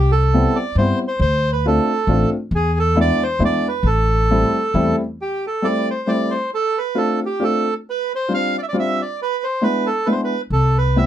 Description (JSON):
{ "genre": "musette waltz", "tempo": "135 BPM", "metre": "3/4", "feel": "swing 55% on 8ths", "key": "A minor", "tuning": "A4 = 442 Hz", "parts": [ { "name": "bandoneon", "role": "melody", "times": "0.0-11.1 s", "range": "G4 to F5", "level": "-20 LUFS", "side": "right 3 dB", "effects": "none" }, { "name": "upright bass", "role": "bass", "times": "0.0-4.9, 10.5-11.1 s", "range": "A1 to G2", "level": "-18 LUFS", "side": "left 1 dB", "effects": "none" }, { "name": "warm upright piano", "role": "accompaniment", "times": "0.3-11.1 s", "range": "G3 to F4", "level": "-20 LUFS", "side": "left 2 dB", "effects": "none" } ], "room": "light reverb", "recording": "dark, warm production", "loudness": "-16 LUFS", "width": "side -11 dB against mid", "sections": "0.0-5.2 A section; 5.2-11.1 A section", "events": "none", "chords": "0.0 Cmaj7; 1.2 Dm7; 2.5 E7; 3.9 Am7; 6.5 Dm7; 7.9 G7sus4; 9.2 E7; 10.5 Cmaj7", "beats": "0.32 0.76 | 1.20 1.65 2.09 | 2.53 2.97 3.41 | 3.86 4.31 4.75 | 5.20 5.65 6.09 | 6.53 6.97 7.42 | 7.86 8.30 8.74 | 9.18 9.62 10.07 | 10.52 10.97" }